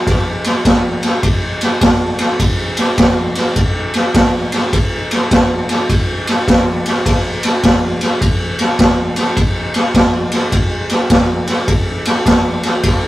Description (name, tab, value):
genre	blues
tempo	104 BPM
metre	4/4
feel	swing 64% on 8ths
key	none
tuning	none
part	raw garage drum kit	drums	0.1-13.0 s	kick drum, ride cymbal, snare drum	-12 LUFS	equal	none
room	light reverb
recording	rough rehearsal-room recording, tube saturation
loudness	-12 LUFS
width	side -16 dB against mid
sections	0.0-13.1 A section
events	none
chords	none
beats	| 0.07 0.66 1.24 1.82 | 2.40 2.99 3.57 4.15 | 4.73 5.31 5.89 6.47 | 7.05 7.63 8.21 8.79 | 9.37 9.95 10.52 11.10 | 11.68 12.26 12.84